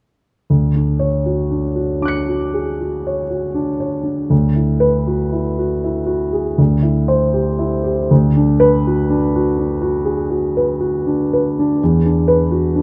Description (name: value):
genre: classical, impressionist solo piano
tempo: 80 BPM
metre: 5/4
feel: uneven beats, rubato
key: D lydian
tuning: A4 = 438 Hz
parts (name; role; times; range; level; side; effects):
- warm grand piano; solo; 0.5-12.8 s; D2 to C#7; -17 LUFS; equal; none
room: moderate recital hall reverb, RT60 1.6 s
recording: close, detailed microphones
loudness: -17 LUFS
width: mono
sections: 0.5-12.8 A section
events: none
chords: 0.5 Dmaj7; 4.3 Esus2/D; 6.6 Cadd9/D; 8.1 D6; 11.8 E7sus2